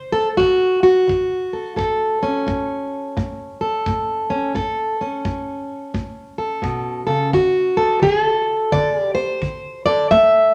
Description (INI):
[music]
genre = acoustic country blues, solo or duo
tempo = 86 BPM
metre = 4/4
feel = swing 63% on 8ths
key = unclear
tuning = A4 = 439 Hz
[part]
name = fingerpicked plugged-in steel-string acoustic guitar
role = melody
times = 0.0-10.5 s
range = A2 to E5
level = -19 LUFS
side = equal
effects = none
[part]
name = kick drum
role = drums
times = 0.4-10.3 s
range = none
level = -32 LUFS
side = equal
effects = none
[sound]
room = wet studio reverb, RT60 0.9 s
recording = none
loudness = -19 LUFS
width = mono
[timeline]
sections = 0.0-10.5 A section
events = none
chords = 0.0 D7; 1.8 A; 7.3 D7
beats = 0.40 1.09 | 1.78 2.48 3.17 3.86 | 4.56 5.25 5.94 6.63 | 7.33 8.02 8.71 9.41 | 10.10